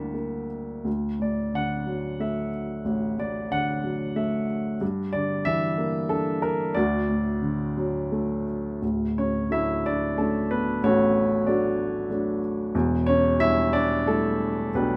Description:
classical, lyrical solo piano; 84-96 BPM; 3/4; rubato; D major; A4 = 437 Hz
dark baby grand piano; solo; 0.0-15.0 s; D1 to F#5; -26 LUFS; equal
light reverb; -26 LUFS; mono
0.0-8.8 A section; 8.8-15.0 B section
0.0 Gm6; 0.9 D; 4.8 Gm6; 6.8 D; 8.8 Dmaj7; 12.7 Em7

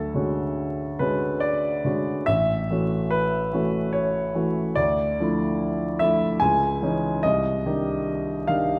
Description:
classical, impressionist solo piano; 72 BPM; 3/4; rubato; A major; A4 = 439 Hz
warm grand piano; solo; 0.0-8.8 s; A1 to Ab5; -24 LUFS; equal
moderate concert hall reverb, RT60 1.8 s; dark, warm production, vinyl crackle; -24 LUFS; mono
0.0-8.8 A section
0.0 Dmaj7#11; 2.3 A6; 4.8 Dmadd9; 6.4 Dbmadd9; 7.2 Cmadd9

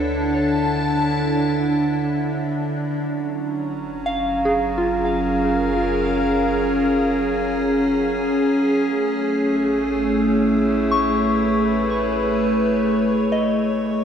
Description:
ambient; free time; A4 = 440 Hz
evolving wavetable pad; sustained chords; 0.0-14.0 s; D3 to A5; -18 LUFS; equal; chorus, built-in reverb
soft synth bell; arpeggios; 0.0-14.0 s; F4 to C#6; -26 LUFS; left 1 dB; chorus, tape echo
deep rumbling drone; bass; 0.0-14.0 s; Gb1 to D2; -34 LUFS; equal; built-in reverb
wet echo chamber reverb, RT60 2.2 s; echo-heavy mix, cassette tape; -18 LUFS; side -8 dB against mid
0.0-14.0 A section
fade-in on synth bell 0.0-14.0; fade-out on synth drone 0.0-14.0
0.0 Dsus2; 2.9 Gbmaj7; 8.8 Amaj7

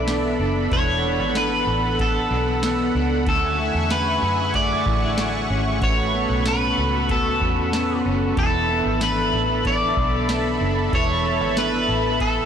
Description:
dream pop; 94 BPM; 4/4; straight; E mixolydian; A4 = 439 Hz
electric guitar at the edge of break-up; melody; 0.0-12.5 s; A4 to D5; -23 LUFS; equal; lush chorus, ping-pong delay
crunchy overdriven guitar; accompaniment; 0.0-12.5 s; D3 to B4; -31 LUFS; right 3 dB; tremolo, wide subtle chorus
lush unison pad; sustained chords; 0.0-12.5 s; D4 to C#6; -26 LUFS; right 1 dB; chorus
clean electric guitar; arpeggios; 0.0-12.5 s; A2 to A4; -26 LUFS; left 2 dB; analog chorus, ping-pong delay
vintage muted fingered electric bass; bass; 0.0-12.5 s; E1 to F#2; -26 LUFS; equal; tube saturation
booming analog drum machine; drums; 0.1-12.4 s; kick drum, ride cymbal, snare drum, tambourine; -26 LUFS; equal
light reverb; blown-out, overdriven recording, overdrive; -18 LUFS; side -8 dB against mid
0.0-12.5 A section
0.0 E7sus4; 3.3 Dmaj9#11; 5.8 A69; 8.4 E7sus4

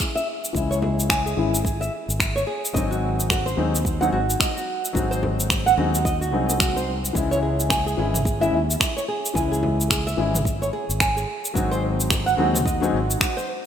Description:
organic downtempo; 109 BPM; 4/4; swing 59% on 16ths; A4 = 440 Hz
nylon-string guitar; arpeggios; 0.0-13.5 s; F#4 to G#5; -26 LUFS; right 3 dB; digital delay
deep house drum kit; drums; 0.0-13.5 s; finger snaps, shaker, toms; -25 LUFS; equal; studio reverb
electronic kick drum; drums; 0.0-13.3 s; -26 LUFS; equal; studio reverb
felt-muted upright piano; accompaniment; 0.5-13.0 s; E3 to E4; -26 LUFS; left 3 dB; sidechain pumping, low-pass filter, digital delay
fretless electric bass; bass; 0.5-13.2 s; G#1 to D#2; -26 LUFS; equal; ensemble chorus, sidechain pumping
frame drum; percussion; 0.8-12.2 s; -34 LUFS; left 2 dB
moderate lush hall reverb, RT60 3.1 s; rough home demo mix; -20 LUFS; side -9 dB against mid
0.0-13.7 A section
filter sweep on felt piano 0.0-13.7
0.0 C#m; 2.7 G#7; 7.2 C#m; 11.6 G#7

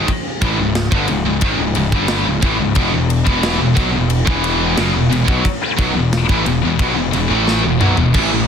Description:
heavy metal; 89 BPM; 4/4; straight; A4 = 441 Hz
distorted electric guitar; riff; 0.0-8.5 s; C#2 to A3; -23 LUFS; equal; overdrive
scooped high-gain guitar; riff; 0.0-8.5 s; C#2 to A3; -19 LUFS; left 10 dB; distortion
scooped high-gain guitar; riff; 0.0-8.5 s; C#2 to A3; -20 LUFS; right 10 dB; distortion
fuzz picked electric bass; bass; 0.0-8.5 s; C#1 to B1; -21 LUFS; equal; overdrive
tight metal drum kit; drums; 0.1-8.3 s; crash cymbal, kick drum, ride cymbal, snare drum, toms; -19 LUFS; equal; soft clipping on kick
light reverb; dense, heavily limited modern master; -13 LUFS; side -7 dB against mid
0.0-8.5 A section
drum fill 7.5-8.1
0.0 C#m; 2.8 E5

